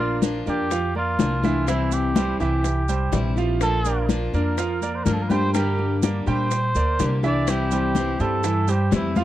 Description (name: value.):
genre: latin, Cuban son and guajira.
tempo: 124 BPM.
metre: 4/4.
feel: straight.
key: unclear.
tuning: A4 = 440 Hz.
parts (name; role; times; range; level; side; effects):
trumpet with cup mute; melody; 0.0-9.2 s; E4 to D5; -26 LUFS; right 1 dB; none.
picked steel-string acoustic guitar; accompaniment; 0.0-9.2 s; C3 to G4; -26 LUFS; left 4 dB; none.
bright baby grand piano; arpeggios; 0.0-9.2 s; E3 to G5; -27 LUFS; right 7 dB; none.
upright bass; bass; 0.0-9.2 s; Bb1 to Bb2; -24 LUFS; equal; none.
bongos; percussion; 0.2-9.2 s; none; -30 LUFS; left 8 dB; none.
congas; percussion; 0.2-9.2 s; none; -26 LUFS; left 3 dB; none.
maracas; percussion; 0.2-9.2 s; none; -37 LUFS; right 22 dB; none.
room: little or no reverb.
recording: dry, close 1970s-style studio recording.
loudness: -20 LUFS.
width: side -13 dB against mid.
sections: 0.0-9.2 A section.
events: none.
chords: 0.0 Bb; 1.7 C; 3.6 Bb; 5.5 Gm; 7.5 C.